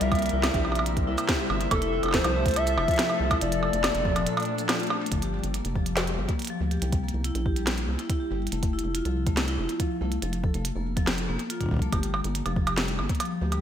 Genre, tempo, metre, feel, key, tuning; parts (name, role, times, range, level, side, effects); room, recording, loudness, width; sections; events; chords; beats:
IDM; 141 BPM; 4/4; straight; G dorian; A4 = 440 Hz
warbly nostalgic lead; melody; 0.0-4.7 s; A4 to E5; -29 LUFS; equal; chorus, ping-pong delay, shimmer reverb
warbly tape-like pad; sustained chords; 0.0-5.1 s; Bb2 to E5; -32 LUFS; left 1 dB; chorus, built-in reverb, sidechain pumping, shimmer reverb
rubbery square bass; bass; 0.0-13.6 s; F1 to D2; -29 LUFS; equal
glitchy drum kit; drums; 0.0-13.6 s; hi-hat, percussion blips, shaker, snare drum; -29 LUFS; right 2 dB; gated reverb, ping-pong delay
vibraphone with medium mallets; arpeggios; 0.1-13.6 s; F3 to A4; -31 LUFS; left 3 dB; vintage 12-bit sampler grit, ping-pong delay, shimmer reverb
electronic kick drum; drums; 0.1-13.2 s; -28 LUFS; equal
moderate lush hall reverb, RT60 2.1 s; bright 1980s-style digital production; -24 LUFS; side -9 dB against mid
0.0-5.1 A section; 5.1-13.6 B section
break 4.3-5.1
0.0 C7; 1.7 Fmaj7; 3.4 Bbmaj7/F; 5.1 G7(no3); 6.8 C7; 8.5 Fmaj7; 10.2 Bbmaj7(no3)/F (rootless); 11.9 Gm7
| 0.01 0.44 0.86 1.29 | 1.71 2.14 2.56 2.99 | 3.41 3.84 4.26 4.69 | 5.12 5.54 5.97 6.39 | 6.82 7.24 7.67 8.10 | 8.52 8.95 9.37 9.80 | 10.22 10.65 11.07 11.50 | 11.93 12.35 12.78 13.20